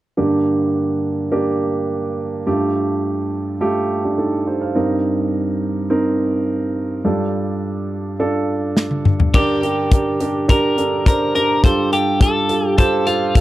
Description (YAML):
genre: piano-driven pop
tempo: 105 BPM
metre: 4/4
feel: straight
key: G minor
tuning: A4 = 441 Hz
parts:
  - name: warm baby grand piano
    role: accompaniment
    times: 0.2-13.4 s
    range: G2 to F5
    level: -18 LUFS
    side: right 2 dB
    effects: none
  - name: modern studio drum kit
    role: drums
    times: 8.8-13.4 s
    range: crash cymbal, hi-hat, kick drum, snare drum, toms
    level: -14 LUFS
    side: left 1 dB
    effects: none
  - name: twelve-string electric guitar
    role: melody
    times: 9.4-13.4 s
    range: F4 to C5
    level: -19 LUFS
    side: left 2 dB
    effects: none
room: small room ambience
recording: dry, close 1970s-style studio recording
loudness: -16 LUFS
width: side -15 dB against mid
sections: 0.2-9.3 A section; 9.3-13.4 B section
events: drum fill 8.8-9.3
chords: 0.2 Gm; 2.5 Fadd9/G; 4.8 Cm7/G; 7.0 Dm/G; 9.3 Gm; 11.6 Fadd9/G